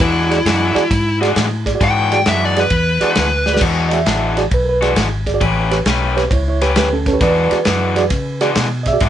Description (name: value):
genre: electric blues shuffle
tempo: 133 BPM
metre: 4/4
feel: swing 67% on 8ths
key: E mixolydian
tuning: A4 = 440 Hz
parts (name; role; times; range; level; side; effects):
- smooth overdriven lead guitar; melody; 0.0-3.6 s; E4 to G5; -17 LUFS; left 1 dB; none
- crunchy overdriven guitar; riff; 0.0-9.1 s; E3 to B4; -20 LUFS; left 4 dB; none
- vintage muted fingered electric bass; bass; 0.0-9.1 s; G#1 to C#3; -19 LUFS; equal; none
- warm soul drum kit; drums; 0.0-9.1 s; crash cymbal, kick drum, ride cymbal, snare drum; -20 LUFS; equal; none
- mellow reed electric piano; accompaniment; 0.3-9.1 s; C#4 to E5; -18 LUFS; right 4 dB; fast tremolo
room: moderate studio ambience, RT60 0.5 s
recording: band playing live in one room, nothing above 10.4 kHz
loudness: -13 LUFS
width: side -10 dB against mid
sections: 0.0-3.6 A section; 3.6-9.1 A section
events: lead electric guitar solo 0.0-3.6; drum fill 3.4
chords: 0.0 E9; 5.4 A9; 7.2 E9